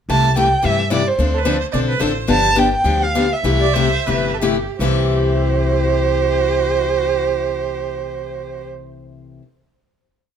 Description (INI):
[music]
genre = acoustic string swing (jazz manouche)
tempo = 154-219 BPM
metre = 4/4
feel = swing 57% on 8ths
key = C major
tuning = A4 = 441 Hz
[part]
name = dark violin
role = melody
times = 0.1-8.7 s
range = C5 to A5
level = -19 LUFS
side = right 4 dB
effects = plate reverb
[part]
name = picked steel-string acoustic guitar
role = accompaniment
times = 0.1-9.4 s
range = C3 to A4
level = -21 LUFS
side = left 5 dB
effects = none
[part]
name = upright bass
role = bass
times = 0.1-9.4 s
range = G1 to G2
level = -21 LUFS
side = equal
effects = none
[part]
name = clear erhu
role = second line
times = 1.3-8.7 s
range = G4 to D5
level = -25 LUFS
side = right 7 dB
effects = none
[sound]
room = moderate studio reverb, RT60 0.7 s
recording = none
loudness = -15 LUFS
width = side -8 dB against mid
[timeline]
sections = 0.1-4.8 A section; 4.8-7.9 final chord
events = slowing down 2.3-4.8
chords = 0.1 C6; 1.2 Dm7; 2.3 G7; 3.4 C6